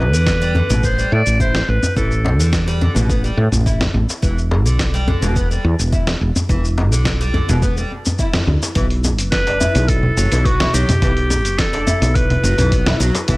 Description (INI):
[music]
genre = organic downtempo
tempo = 106 BPM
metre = 4/4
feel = straight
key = unclear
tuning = A4 = 439 Hz
[part]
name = bright clarinet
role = melody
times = 0.0-2.5, 9.3-13.0 s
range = F#4 to D5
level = -21 LUFS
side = equal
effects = tape echo
[part]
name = woody fretless electric bass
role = bass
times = 0.0-13.4 s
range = E1 to A2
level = -17 LUFS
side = equal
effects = tube saturation, sidechain pumping
[part]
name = oud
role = arpeggios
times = 0.1-13.4 s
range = B2 to E4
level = -24 LUFS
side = equal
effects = analog delay
[part]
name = dusty soul sampler-style drum kit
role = drums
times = 0.1-13.4 s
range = congas, hi-hat, shaker, snare drum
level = -22 LUFS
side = equal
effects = studio reverb
[part]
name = electronic kick drum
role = drums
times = 0.3-13.4 s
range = none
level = -20 LUFS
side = equal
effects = studio reverb
[part]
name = djembe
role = percussion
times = 0.5-13.3 s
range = none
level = -22 LUFS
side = left 1 dB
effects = none
[sound]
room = studio reverb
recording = dry, gritty hardware recording, cassette tape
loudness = -14 LUFS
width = side -22 dB against mid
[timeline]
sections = 0.0-8.8 A section; 8.8-13.4 B section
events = band accent 8.3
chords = 0.0 A5; 4.2 E5; 8.8 B7(no3)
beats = 0.27 0.83 1.40 | 1.97 2.53 3.10 3.67 | 4.23 4.80 5.36 5.93 | 6.50 7.06 7.63 8.19 | 8.76 9.32 9.89 10.46 | 11.02 11.59 12.16 12.72 | 13.29